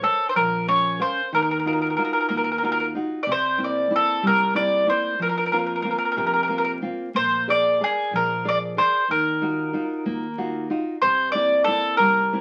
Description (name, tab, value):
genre	italian folk, Italian serenade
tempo	62 BPM (dotted quarters)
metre	6/8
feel	straight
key	unclear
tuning	A4 = 440 Hz
part	mandolin	melody	0.0-12.4 s	Ab4 to D5	-23 LUFS	equal	none
part	nylon-string guitar	accompaniment	0.0-12.4 s	C3 to F5	-30 LUFS	equal	none
part	upright bass	bass	0.0-12.4 s	Bb1 to F2	-43 LUFS	equal	none
room	wet studio ambience, RT60 0.5 s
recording	very old 78 rpm record, vinyl crackle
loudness	-22 LUFS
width	mono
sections	0.0-12.4 A section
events	none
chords	0.0 Bbmadd9; 1.3 Ebmadd9; 3.3 C7; 5.2 Fsus4; 7.1 Bb7; 9.1 Ebmadd9; 11.0 C7